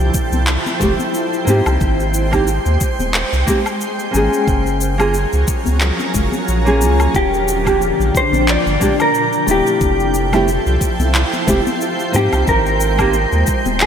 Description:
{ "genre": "sunset chillout", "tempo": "90 BPM", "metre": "4/4", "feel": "swing 56% on 16ths", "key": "unclear", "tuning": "A4 = 440 Hz", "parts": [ { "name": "shimmering ambient pad", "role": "sustained chords", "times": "0.0-13.9 s", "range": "Bb2 to G5", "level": "-20 LUFS", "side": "equal", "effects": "chorus, built-in reverb" }, { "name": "warm sub bass", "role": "bass", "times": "0.0-13.9 s", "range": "Eb1 to Ab2", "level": "-18 LUFS", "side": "equal", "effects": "none" }, { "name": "electronic shaker, handclaps and woodblock", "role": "drums", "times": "0.0-13.9 s", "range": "none", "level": "-23 LUFS", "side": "left 2 dB", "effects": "gated reverb" }, { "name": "electronic kick drum", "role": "drums", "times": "0.1-13.6 s", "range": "none", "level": "-20 LUFS", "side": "equal", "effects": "none" }, { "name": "congas", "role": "percussion", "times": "0.3-13.8 s", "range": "none", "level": "-25 LUFS", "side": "left 4 dB", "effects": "none" }, { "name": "nylon-string guitar", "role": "accompaniment", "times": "0.8-13.1 s", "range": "A3 to Ab4", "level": "-20 LUFS", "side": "moving between left 3 dB and right 4 dB", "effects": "auto-pan, vintage 12-bit sampler grit, ping-pong delay" }, { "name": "mellow electric guitar", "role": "melody", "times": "7.2-13.9 s", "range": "G4 to D5", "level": "-18 LUFS", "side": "equal", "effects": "lush chorus, ping-pong delay" } ], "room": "moderate lush hall reverb, RT60 2.6 s", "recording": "bright 1980s-style digital production", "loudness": "-13 LUFS", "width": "side -8 dB against mid", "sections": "0.0-13.9 A section", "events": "none", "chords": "0.0 Fmaj9; 1.5 Abmaj9; 4.5 Gbmaj9; 7.1 Ebmaj9; 9.8 Fmaj9; 12.1 Abmaj9" }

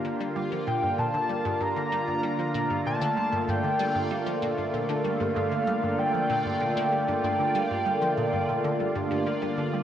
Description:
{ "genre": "ambient, sequencer-driven space music", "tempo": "96 BPM", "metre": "4/4", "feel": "straight", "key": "G minor", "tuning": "A4 = 438 Hz", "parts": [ { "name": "pulse-width lead", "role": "melody", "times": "0.0-9.7 s", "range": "F5 to Bb5", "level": "-29 LUFS", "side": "equal", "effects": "chorus, cassette tape, ping-pong delay" }, { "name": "lush unison pad", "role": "sustained chords", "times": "0.0-9.8 s", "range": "D3 to G4", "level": "-29 LUFS", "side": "equal", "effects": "chorus, phaser, cassette tape" }, { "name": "resonant blip pluck", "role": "riff", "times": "0.0-9.8 s", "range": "G2 to G3", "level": "-32 LUFS", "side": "equal", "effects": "phaser, analog chorus, cassette tape, ping-pong delay" }, { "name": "bubbling stepped-filter texture", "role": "texture", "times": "0.0-9.8 s", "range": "F4 to F5", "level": "-33 LUFS", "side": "equal", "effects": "chorus, built-in reverb, cassette tape" } ], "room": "wet spring reverb, RT60 2.0 s", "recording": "home recording on cassette", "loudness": "-24 LUFS", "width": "side -10 dB against mid", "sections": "0.0-9.8 A section", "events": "none", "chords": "0.0 Gm7" }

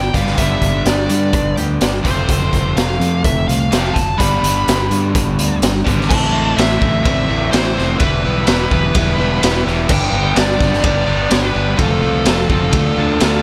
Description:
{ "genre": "quiet-loud alternative rock", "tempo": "126 BPM", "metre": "4/4", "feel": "straight", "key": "A minor", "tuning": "A4 = 440 Hz", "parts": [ { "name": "dark smooth lead guitar", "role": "melody", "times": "0.0-13.4 s", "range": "A4 to B5", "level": "-23 LUFS", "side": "equal", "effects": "overdrive" }, { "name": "twangy electric guitar", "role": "arpeggios", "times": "0.0-2.3 s", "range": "F2 to G4", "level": "-34 LUFS", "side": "equal", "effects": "none" }, { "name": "overdriven electric guitar", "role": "riff", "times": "0.0-13.4 s", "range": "F2 to F4", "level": "-21 LUFS", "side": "equal", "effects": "spring reverb" }, { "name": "growling fingered electric bass", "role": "bass", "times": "0.0-13.4 s", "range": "E1 to G2", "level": "-22 LUFS", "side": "equal", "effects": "overdrive" }, { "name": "raw garage drum kit", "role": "drums", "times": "0.1-13.3 s", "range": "crash cymbal, hi-hat, kick drum, ride cymbal, snare drum", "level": "-20 LUFS", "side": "equal", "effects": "none" } ], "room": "light reverb, studio reverb", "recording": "none", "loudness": "-15 LUFS", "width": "mono", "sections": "0.0-6.1 A section; 6.1-13.4 B section", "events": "none", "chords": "0.0 G; 2.1 F; 4.2 G; 6.1 Am; 8.0 Em; 9.9 G; 11.8 F; 12.7 Dm" }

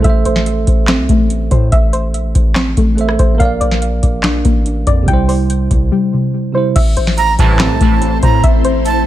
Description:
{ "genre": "hip hop, trap", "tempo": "143 BPM", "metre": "4/4", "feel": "half-time", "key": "A phrygian", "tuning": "A4 = 440 Hz", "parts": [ { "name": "tine electric piano", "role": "accompaniment", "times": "0.0-6.8 s", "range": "C3 to F5", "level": "-19 LUFS", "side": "right 5 dB", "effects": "low-pass filter" }, { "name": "soft round pluck", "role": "arpeggios", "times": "0.0-9.1 s", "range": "C3 to G5", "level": "-18 LUFS", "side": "left 3 dB", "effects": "chorus, low-pass filter, digital delay" }, { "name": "long sustained 808-style bass", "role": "bass", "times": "0.0-9.1 s", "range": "A1 to A2", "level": "-16 LUFS", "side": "equal", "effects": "none" }, { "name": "booming analog drum machine", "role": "drums", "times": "0.0-9.0 s", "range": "crash cymbal, handclaps, hi-hat, kick drum, rim click, snare drum", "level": "-13 LUFS", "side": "equal", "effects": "vintage 12-bit sampler grit" }, { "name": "ethereal airy pad", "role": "sustained chords", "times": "7.1-9.1 s", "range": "A3 to C5", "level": "-20 LUFS", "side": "left 2 dB", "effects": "ensemble chorus, built-in reverb" }, { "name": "breathy bright jazz flute", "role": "second line", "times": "7.2-9.1 s", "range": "A5 to Bb5", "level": "-17 LUFS", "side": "right 6 dB", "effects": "digital delay" }, { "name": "resonant sweep polysynth", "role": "stabs", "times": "7.4-7.7 s", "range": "C2 to E3", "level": "-19 LUFS", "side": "right 2 dB", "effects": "chorus, digital delay" } ], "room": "digital ambience", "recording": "none", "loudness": "-11 LUFS", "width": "side -13 dB against mid", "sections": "0.0-6.8 A section; 6.8-9.1 B section", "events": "none", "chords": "0.0 Am; 3.4 Bb; 5.1 C; 6.8 Am" }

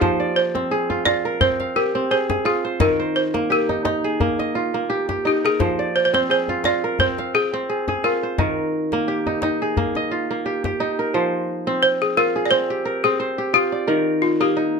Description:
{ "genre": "west african traditional, West African string and xylophone music", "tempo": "86 BPM", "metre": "4/4", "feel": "swing 55% on 16ths", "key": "F dorian", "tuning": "A4 = 442 Hz", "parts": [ { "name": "balafon", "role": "melody", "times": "0.0-14.8 s", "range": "F4 to D5", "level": "-20 LUFS", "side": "left 1 dB", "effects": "none" }, { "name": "kora", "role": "arpeggios", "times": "0.0-14.8 s", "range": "Eb3 to G5", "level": "-21 LUFS", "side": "right 1 dB", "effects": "none" }, { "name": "djembe", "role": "percussion", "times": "0.0-10.8 s", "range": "none", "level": "-26 LUFS", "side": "left 5 dB", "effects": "none" } ], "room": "moderate small room reverb, RT60 0.5 s", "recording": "none", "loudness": "-18 LUFS", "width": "side -5 dB against mid", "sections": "0.0-11.1 A section; 11.1-14.8 B section", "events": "balafon solo 11.1-14.8", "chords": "0.0 Fm; 2.8 Eb; 5.6 Fm; 8.4 Eb; 11.1 Fm; 13.9 Eb" }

